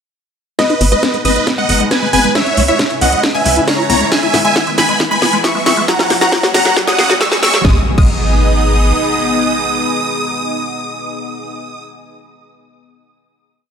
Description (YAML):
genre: uplifting trance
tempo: 136 BPM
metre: 4/4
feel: straight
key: G# minor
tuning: A4 = 440 Hz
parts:
  - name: supersaw chords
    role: melody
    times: 0.6-11.8 s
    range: B4 to E6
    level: -16 LUFS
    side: right 1 dB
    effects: phaser, sidechain pumping, ping-pong delay
  - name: analog pluck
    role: second line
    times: 0.6-11.8 s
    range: D#5 to E6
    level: -21 LUFS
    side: left 1 dB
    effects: chorus, sidechain pumping, ping-pong delay
  - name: lush unison pad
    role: sustained chords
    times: 0.6-11.5 s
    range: G#3 to D#5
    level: -20 LUFS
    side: left 1 dB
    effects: chorus, phaser, sidechain pumping
  - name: liquid acid bass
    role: arpeggios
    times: 0.6-8.1 s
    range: F#3 to F#4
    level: -20 LUFS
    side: left 4 dB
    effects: phaser, ensemble chorus, cassette tape, sidechain pumping, ping-pong delay
  - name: electronic kick drum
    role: drums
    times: 0.6-8.1 s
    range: none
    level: -16 LUFS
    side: equal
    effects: high-pass filter on kick, high-pass filter on room
  - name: house drum kit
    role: drums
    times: 0.6-8.1 s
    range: crash cymbal, hi-hat, snare drum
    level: -16 LUFS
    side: equal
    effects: sidechain pumping on hats, sidechain pumping on cymbals
  - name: riser and impact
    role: sound effects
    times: 2.4-11.5 s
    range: none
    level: -24 LUFS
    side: right 1 dB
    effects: none
  - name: tight sequencer bass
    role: bass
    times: 0.8-8.9 s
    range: E1 to C#2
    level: -16 LUFS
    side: equal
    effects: sidechain pumping
room: light reverb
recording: high-pass filter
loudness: -11 LUFS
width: side -7 dB against mid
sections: 0.6-7.6 build; 7.6-11.2 final chord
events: build-up 0.6-7.6; drum fill 0.6-7.6; filter sweep on acid bass 0.6-7.6; riser 2.4-7.6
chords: 0.6 G#m; 2.4 C#m7; 4.1 E; 5.9 F#; 7.6 G#m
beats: | 0.59 1.03 1.47 1.91 | 2.35 2.79 3.23 3.68 | 4.12 4.56 5.00 5.44 | 5.88 6.32 6.76 7.21 | 7.65 8.09 8.53 8.97 | 9.41 9.85 10.29 10.73